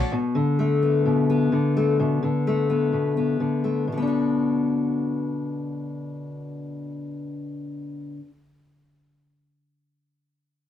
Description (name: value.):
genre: folk.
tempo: 128 BPM.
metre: 4/4.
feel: straight.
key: B minor.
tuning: A4 = 436 Hz.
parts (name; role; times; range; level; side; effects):
fingerpicked steel-string acoustic guitar; accompaniment; 0.1-8.3 s; B2 to F#4; -22 LUFS; left 2 dB; none.
room: moderate studio reverb, RT60 0.6 s.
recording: rough rehearsal-room recording.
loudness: -21 LUFS.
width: side -10 dB against mid.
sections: 0.1-3.9 A section; 3.9-7.6 B section.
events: none.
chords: 0.1 Bm7; 3.9 Bm.